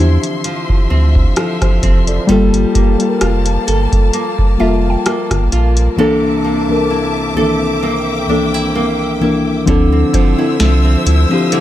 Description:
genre	contemporary R&B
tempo	65 BPM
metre	4/4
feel	swing 54% on 16ths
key	G dorian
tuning	A4 = 439 Hz
part	muted felt-like synth keys	accompaniment	0.0-11.6 s	C2 to D5	-16 LUFS	left 2 dB	chorus
part	warm studio string section	sustained chords	0.0-11.6 s	F3 to E6	-22 LUFS	left 3 dB	none
part	nylon-string guitar	arpeggios	0.0-11.6 s	C3 to A4	-20 LUFS	right 2 dB	tape echo
part	warm sub bass	bass	0.0-11.3 s	F1 to E2	-13 LUFS	equal	none
part	booming analog drum machine	drums	0.2-11.6 s	hi-hat, kick drum, rim click, snare drum	-14 LUFS	equal	none
part	mallet-like synth pluck	texture	4.6-11.3 s	C5 to G5	-27 LUFS	right 4 dB	chorus, tape echo
room	little or no reverb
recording	none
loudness	-11 LUFS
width	side -13 dB against mid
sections	0.0-9.7 A section; 9.7-11.6 B section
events	none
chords	0.0 Dm9; 2.3 Gm9; 6.0 C13; 9.7 Dm9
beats	0.44 1.37 | 2.29 3.21 4.14 5.06 | 5.98 6.91 7.83 8.75 | 9.67 10.60 11.52

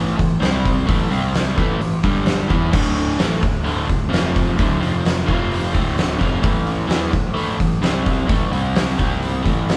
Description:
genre	garage rock duo or trio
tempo	130 BPM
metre	4/4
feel	straight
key	unclear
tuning	A4 = 440 Hz
part	crunchy overdriven guitar	riff	0.0-9.8 s	D2 to E4	-23 LUFS	equal	none
part	fuzz picked electric bass	bass	0.0-9.8 s	D1 to E2	-26 LUFS	equal	overdrive
part	oversized low-tuned drum kit	drums	0.2-9.8 s	crash cymbal, hi-hat, kick drum, snare drum	-22 LUFS	equal	none
room	moderate stone room reverb, RT60 1.4 s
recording	band playing live in one room, cassette tape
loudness	-19 LUFS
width	mono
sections	0.0-9.8 A section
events	none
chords	0.4 C5; 0.9 A5; 1.1 C5; 1.6 A5; 2.0 G5; 2.5 E5; 2.7 D5; 4.1 F5; 4.6 D5; 4.8 F5; 5.7 D5; 6.4 A5; 7.8 C5; 8.3 A5; 8.5 C5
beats	0.41 | 0.88 1.34 1.80 2.27 | 2.73 3.19 3.66 4.12 | 4.58 5.05 5.51 5.97 | 6.43 6.90 7.36 7.82 | 8.29 8.75 9.21 9.68

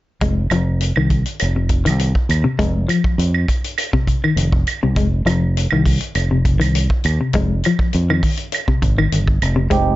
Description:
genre	afrobeat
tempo	101 BPM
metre	4/4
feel	straight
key	F minor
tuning	A4 = 440 Hz
part	semi-hollow electric guitar	arpeggios	0.2-10.0 s	C3 to Ab3	-20 LUFS	left 3 dB	tremolo
part	fingered electric bass	bass	0.2-10.0 s	F1 to F2	-17 LUFS	equal	none
part	vintage drum kit	drums	0.2-9.9 s	hi-hat, kick drum	-20 LUFS	equal	none
part	claves	percussion	0.5-9.6 s	none	-24 LUFS	right 9 dB	none
part	barky tine electric piano	accompaniment	9.7-10.0 s	Ab3 to G4	-16 LUFS	right 7 dB	overdrive, phaser
room	light reverb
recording	nothing above 7.6 kHz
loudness	-15 LUFS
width	side -16 dB against mid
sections	0.2-10.0 A section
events	none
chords	0.2 Fm7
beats	| 0.22 0.81 1.41 2.00 | 2.60 3.19 3.78 4.38 | 4.97 5.56 6.15 6.75 | 7.34 7.93 8.53 9.12 | 9.71

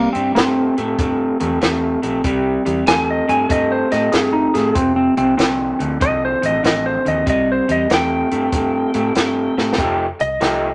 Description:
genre	electric blues shuffle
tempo	96 BPM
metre	4/4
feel	swing 66% on 8ths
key	F mixolydian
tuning	A4 = 441 Hz
part	clean lap steel guitar	melody	0.0-10.7 s	Bb3 to Ab5	-21 LUFS	equal	none
part	electric guitar through a small old amp	riff	0.0-10.7 s	F2 to G4	-21 LUFS	equal	none
part	vintage muted fingered electric bass	bass	0.0-10.7 s	F1 to A2	-30 LUFS	equal	none
part	compact cocktail drum kit	drums	0.1-10.6 s	hi-hat, kick drum, snare drum	-23 LUFS	equal	none
room	wet studio reverb, RT60 0.7 s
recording	nothing above 10.6 kHz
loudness	-17 LUFS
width	mono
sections	0.0-9.8 A section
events	electric slide guitar solo 0.0-9.8; drum fill 9.5-9.8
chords	0.0 C; 4.8 F7; 7.3 C; 9.8 F9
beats	0.36 0.99 1.62 | 2.25 2.88 3.51 4.13 | 4.76 5.39 6.02 6.65 | 7.28 7.90 8.53 9.16 | 9.79 10.42

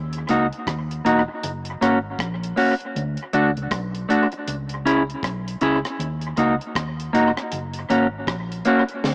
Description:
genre	roots reggae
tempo	79 BPM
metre	4/4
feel	swing 61% on 16ths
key	unclear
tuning	A4 = 438 Hz
part	vintage muted fingered electric bass	bass	0.0-9.1 s	E1 to D#2	-31 LUFS	equal	none
part	deep reggae drum kit	drums	0.1-9.1 s	hi-hat, kick drum, rim click, snare drum	-32 LUFS	equal	dub echo
part	clean electric guitar	accompaniment	0.3-8.8 s	A3 to G#4	-23 LUFS	equal	tape echo
room	light reverb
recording	echo-heavy mix, small speaker sound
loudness	-22 LUFS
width	mono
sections	0.0-9.1 A section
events	none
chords	0.0 D#m; 1.4 F#; 2.9 D; 4.5 C#m; 6.0 D#m; 7.5 F#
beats	0.67 | 1.43 2.19 2.95 3.71 | 4.47 5.23 5.99 6.75 | 7.51 8.28 9.04

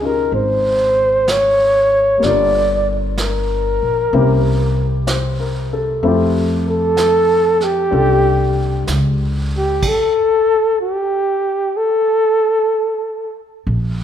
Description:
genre	jazz ballad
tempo	63 BPM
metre	4/4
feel	swing 69% on 8ths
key	F major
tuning	A4 = 440 Hz
part	breathy flugelhorn	melody	0.0-13.4 s	G4 to D5	-15 LUFS	equal	none
part	warm upright piano	accompaniment	0.0-9.8 s	F3 to C5	-21 LUFS	left 4 dB	none
part	upright bass	bass	0.0-14.0 s	G1 to F2	-19 LUFS	equal	none
part	vintage brush drum kit	drums	0.3-14.0 s	brushed snare drum, crash cymbal, hi-hat, kick drum, snare drum	-27 LUFS	right 3 dB	none
room	light reverb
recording	minimal, uncompressed stereo recording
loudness	-13 LUFS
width	side -9 dB against mid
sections	0.0-13.7 A section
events	none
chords	0.0 Dbmaj9; 2.2 Gm7; 4.1 C7b9; 6.0 Fmaj9; 9.8 N.C.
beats	0.32 1.27 | 2.22 3.17 4.12 5.07 | 6.02 6.96 7.92 8.87 | 9.82 10.78 11.74 12.71 | 13.67

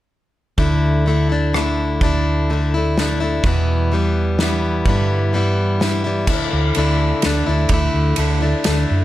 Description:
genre	folk rock and heartland rock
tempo	127 BPM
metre	3/4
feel	straight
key	unclear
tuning	A4 = 440 Hz
part	picked plugged-in steel-string acoustic guitar	accompaniment	0.6-9.0 s	E2 to E4	-19 LUFS	left 2 dB	none
part	hollow-body short-scale fingered electric bass	bass	0.6-9.0 s	D2 to G2	-19 LUFS	right 1 dB	none
part	loose indie drum kit	drums	0.6-8.8 s	crash cymbal, kick drum, ride cymbal, rim click, snare drum	-21 LUFS	equal	none
room	little or no reverb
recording	none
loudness	-15 LUFS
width	side -14 dB against mid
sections	0.6-6.3 A section; 6.3-9.0 B section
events	none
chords	0.6 Dsus2; 3.4 Em; 4.9 G6; 6.3 Dsus2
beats	| 0.59 1.07 1.54 | 2.02 2.49 2.97 | 3.44 3.92 4.39 | 4.86 5.34 5.81 | 6.28 6.76 7.23 | 7.70 8.18 8.65

